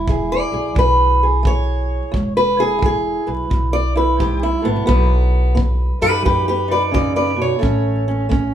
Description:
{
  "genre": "acoustic country blues, solo or duo",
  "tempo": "87 BPM",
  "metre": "4/4",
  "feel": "swing 65% on 8ths",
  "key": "E major",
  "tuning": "A4 = 440 Hz",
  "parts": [
    { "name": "fingerpicked steel-string acoustic guitar", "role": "melody", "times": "0.0-8.5 s", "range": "E2 to D5", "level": "-17 LUFS", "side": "right 1 dB", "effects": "none" },
    { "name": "upright bass", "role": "bass", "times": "0.0-8.5 s", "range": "E1 to F#2", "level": "-19 LUFS", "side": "equal", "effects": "none" },
    { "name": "kick drum", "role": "drums", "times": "0.1-8.5 s", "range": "none", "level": "-20 LUFS", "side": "equal", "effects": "none" }
  ],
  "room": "light reverb",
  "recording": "band playing live in one room, vinyl crackle",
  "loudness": "-15 LUFS",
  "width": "side -10 dB against mid",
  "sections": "0.0-8.5 A section",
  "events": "steel-string acoustic guitar solo 0.0-8.5",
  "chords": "0.0 E; 4.9 B; 7.6 A"
}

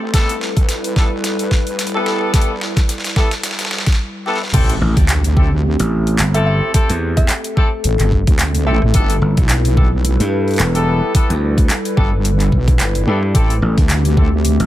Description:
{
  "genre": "glitch hop",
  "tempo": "109 BPM",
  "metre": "4/4",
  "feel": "swing 56% on 16ths",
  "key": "A minor",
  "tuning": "A4 = 440 Hz",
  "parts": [
    { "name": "warbly tape-like pad", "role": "sustained chords", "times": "0.0-14.7 s", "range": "G3 to B4", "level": "-23 LUFS", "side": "left 1 dB", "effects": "chorus, built-in reverb, vintage 12-bit sampler grit, sidechain pumping" },
    { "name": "wobble bass", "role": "bass", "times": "0.0-14.6 s", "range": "E1 to G2", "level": "-17 LUFS", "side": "equal", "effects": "chorus, tube saturation, high-pass filter" },
    { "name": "warm horn section", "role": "stabs", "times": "0.1-14.3 s", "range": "B3 to A4", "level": "-23 LUFS", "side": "left 1 dB", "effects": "sidechain pumping, tape echo" },
    { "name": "dubstep drum kit", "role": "drums", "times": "0.1-14.7 s", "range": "crash cymbal, handclaps, hi-hat, rim click, snare drum, toms", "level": "-22 LUFS", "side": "equal", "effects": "overdrive, high-pass filter on hats, high-pass filter on snare, high-pass filter on toms, high-pass filter on cymbals" },
    { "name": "electronic kick drum", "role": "drums", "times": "0.1-14.3 s", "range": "none", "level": "-14 LUFS", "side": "equal", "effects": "overdrive" },
    { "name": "impact", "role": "sound effects", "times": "4.5-6.7 s", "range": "none", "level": "-24 LUFS", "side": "equal", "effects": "none" },
    { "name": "gritty slap bass", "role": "bass", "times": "4.8-14.7 s", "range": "E1 to G2", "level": "-16 LUFS", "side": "equal", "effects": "overdrive, tube saturation" },
    { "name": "woody wave-folded pluck", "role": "melody", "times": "6.3-9.0 s", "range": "E5", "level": "-26 LUFS", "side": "equal", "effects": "chorus, cassette tape, tape echo" }
  ],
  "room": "little or no reverb",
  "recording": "none",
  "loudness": "-13 LUFS",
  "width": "side -14 dB against mid",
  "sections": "0.0-4.5 A section; 4.5-14.7 B section",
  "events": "build-up 0.0-4.5; drum fill 0.0-4.0, 4.3; break 4.0-4.5; drop 4.5-14.7; impact 4.5-6.7",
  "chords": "0.1 G69; 4.5 Am7; 8.9 G69; 13.3 Am7"
}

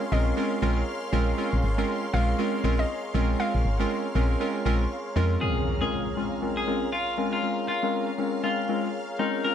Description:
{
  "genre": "deep house",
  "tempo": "119 BPM",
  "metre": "4/4",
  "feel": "swing 60% on 16ths",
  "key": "Bb minor",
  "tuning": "A4 = 440 Hz",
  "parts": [
    { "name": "hollow square pluck", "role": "melody", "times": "0.0-3.8 s", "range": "Eb5 to F5", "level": "-34 LUFS", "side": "left 1 dB", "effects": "chorus, tape echo" },
    { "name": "warm analog pad", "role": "sustained chords", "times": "0.0-9.5 s", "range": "Ab4 to C6", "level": "-35 LUFS", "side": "right 1 dB", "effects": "chorus" },
    { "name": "warm analog keys", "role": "stabs", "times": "0.0-9.5 s", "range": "Ab3 to Bb4", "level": "-28 LUFS", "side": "equal", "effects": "chorus, low-pass filter" },
    { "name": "string machine, violins", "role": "texture", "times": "0.0-9.5 s", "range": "F5 to F6", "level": "-40 LUFS", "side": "left 1 dB", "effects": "ensemble chorus" },
    { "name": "woody FM bass", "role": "bass", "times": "0.1-5.4 s", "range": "Ab1 to F2", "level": "-25 LUFS", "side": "equal", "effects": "none" },
    { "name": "semi-hollow electric guitar", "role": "melody", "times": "5.4-9.5 s", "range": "Eb4 to Bb4", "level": "-29 LUFS", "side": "left 1 dB", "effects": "tape echo" },
    { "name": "impact", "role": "sound effects", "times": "5.4-7.4 s", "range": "none", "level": "-32 LUFS", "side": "left 1 dB", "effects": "none" }
  ],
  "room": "light reverb, digital ambience",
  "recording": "none",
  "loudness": "-24 LUFS",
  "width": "side -9 dB against mid",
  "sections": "0.0-5.4 A section; 5.4-9.5 B section",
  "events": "impact 5.4-7.4",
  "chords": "0.0 Bbm9"
}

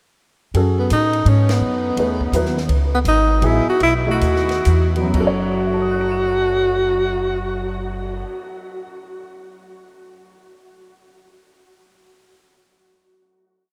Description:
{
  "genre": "modal jazz",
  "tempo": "117-168 BPM",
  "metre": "3/4",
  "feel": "swing 64% on 8ths",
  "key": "F# dorian",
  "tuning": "A4 = 443 Hz",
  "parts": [
    { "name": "warm baby grand piano", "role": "accompaniment", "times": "0.5-9.2 s", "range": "F#2 to E7", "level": "-26 LUFS", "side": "equal", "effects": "none" },
    { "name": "upright bass", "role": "bass", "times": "0.5-8.2 s", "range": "F#1 to A2", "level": "-22 LUFS", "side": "equal", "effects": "none" },
    { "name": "compact cocktail drum kit", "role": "drums", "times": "0.5-8.1 s", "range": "crash cymbal, cymbal swell, hi-hat, kick drum, ride cymbal, snare drum", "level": "-33 LUFS", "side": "equal", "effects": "none" },
    { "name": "breathy tenor saxophone", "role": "melody", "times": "0.8-8.2 s", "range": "B3 to F#4", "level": "-22 LUFS", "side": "equal", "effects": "none" }
  ],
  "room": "moderate huge ambient reverb, RT60 8.3 s",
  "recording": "in a vast, echoing space",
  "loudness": "-18 LUFS",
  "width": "mono",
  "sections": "0.5-5.1 A section; 5.1-8.2 final chord",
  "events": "band accent 1.4; slowing down 2.7-5.1",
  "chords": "0.5 F#9sus4; 5.1 F#m"
}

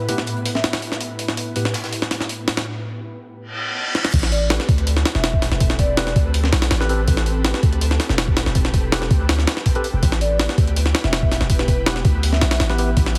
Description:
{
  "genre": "drum and bass, jungle",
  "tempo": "163 BPM",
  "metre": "4/4",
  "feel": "straight",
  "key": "A minor",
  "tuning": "A4 = 438 Hz",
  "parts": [
    { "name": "vibraphone with soft mallets", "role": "melody", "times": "0.0-0.8, 4.3-6.2, 10.2-12.6 s", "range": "B4 to E5", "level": "-31 LUFS", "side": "equal", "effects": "dub echo" },
    { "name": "ethereal airy pad", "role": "sustained chords", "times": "0.0-13.2 s", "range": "A2 to B4", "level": "-33 LUFS", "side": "equal", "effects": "ensemble chorus, built-in reverb" },
    { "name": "barky tine electric piano", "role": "stabs", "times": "0.1-1.7, 4.5-12.9 s", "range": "A2 to B4", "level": "-30 LUFS", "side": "equal", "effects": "dub echo" },
    { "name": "jungle sampler-style drum kit", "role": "drums", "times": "0.1-13.2 s", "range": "crash cymbal, hi-hat, kick drum, snare drum", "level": "-22 LUFS", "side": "equal", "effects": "small room reverb" },
    { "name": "open jazz drum kit", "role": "drums", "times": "0.1-2.6 s", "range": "hi-hat, snare drum", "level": "-37 LUFS", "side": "equal", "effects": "none" },
    { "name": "reverse cymbal", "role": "sound effects", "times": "3.5-4.1 s", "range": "none", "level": "-27 LUFS", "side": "equal", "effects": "none" },
    { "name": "long sustained 808-style bass", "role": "bass", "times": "4.1-13.2 s", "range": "E1 to D2", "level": "-22 LUFS", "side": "equal", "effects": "none" }
  ],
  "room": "light reverb",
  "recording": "heavily compressed radio sound",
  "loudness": "-19 LUFS",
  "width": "mono",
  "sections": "0.0-4.1 A section; 4.1-13.2 B section",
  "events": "filter sweep on ambient pad 0.0-4.1; break 2.7-4.1; reverse cymbal 3.5-4.1; drum fill 4.0; drop 4.1-13.2",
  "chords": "0.0 Em/A; 4.1 Am9; 10.0 Em"
}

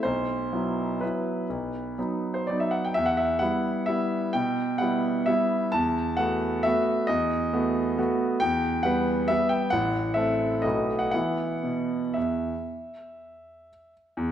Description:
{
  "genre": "classical, piano waltz",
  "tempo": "113-146 BPM",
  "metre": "3/4",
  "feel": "rubato",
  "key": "E minor",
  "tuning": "A4 = 440 Hz",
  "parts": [
    { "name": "bright concert grand piano", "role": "solo", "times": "0.0-14.3 s", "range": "A1 to A5", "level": "-24 LUFS", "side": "equal", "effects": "none" }
  ],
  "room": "wet scoring stage reverb, RT60 1.5 s",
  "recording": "none",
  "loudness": "-24 LUFS",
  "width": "side -10 dB against mid",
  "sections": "0.0-14.2 A section",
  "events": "none",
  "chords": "0.1 Bsus4; 1.5 B; 3.0 Em; 5.7 B7/E; 8.4 Em; 9.7 Am; 10.6 B7; 11.1 E5"
}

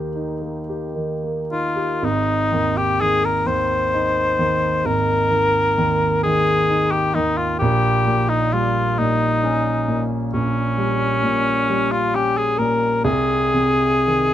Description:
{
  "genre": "classical, romantic duo for cor anglais and grand piano",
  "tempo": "36-46 BPM (dotted quarters)",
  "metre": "12/8",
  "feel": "rubato",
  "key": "Ab major",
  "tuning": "A4 = 440 Hz",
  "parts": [
    { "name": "warm grand piano", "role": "accompaniment", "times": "0.0-14.3 s", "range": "Ab1 to C6", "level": "-21 LUFS", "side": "right 1 dB", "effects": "none" },
    { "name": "mellow cor anglais", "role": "melody", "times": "1.5-14.3 s", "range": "Db4 to C5", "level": "-18 LUFS", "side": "left 2 dB", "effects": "none" }
  ],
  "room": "light reverb",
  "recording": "close, detailed microphones",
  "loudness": "-17 LUFS",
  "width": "side -12 dB against mid",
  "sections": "0.0-2.0 A section; 2.0-14.3 B section",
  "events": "none",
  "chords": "0.0 Eb; 2.0 Ab; 7.6 Gdim/Bb; 13.0 Ab/C"
}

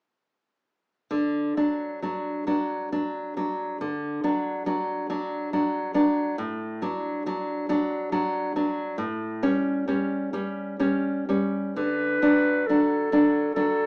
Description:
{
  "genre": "romantic duo for clarinet and classical guitar",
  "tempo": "60-71 BPM",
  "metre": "3/4",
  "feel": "rubato",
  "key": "D major",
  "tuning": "A4 = 442 Hz",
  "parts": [
    { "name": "nylon-string guitar", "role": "accompaniment", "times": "1.1-13.9 s", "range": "A2 to D4", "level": "-27 LUFS", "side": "equal", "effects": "none" },
    { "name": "clear clarinet", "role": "melody", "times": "11.8-13.9 s", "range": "A4 to B4", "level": "-27 LUFS", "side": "equal", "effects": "none" }
  ],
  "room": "moderate large studio reverb, RT60 1.1 s",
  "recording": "band playing live in one room, small speaker sound",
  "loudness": "-26 LUFS",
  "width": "mono",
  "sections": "1.1-11.8 A section; 11.8-13.9 B section",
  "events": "none",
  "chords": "1.1 D; 6.4 D/A; 9.0 A7; 11.8 D"
}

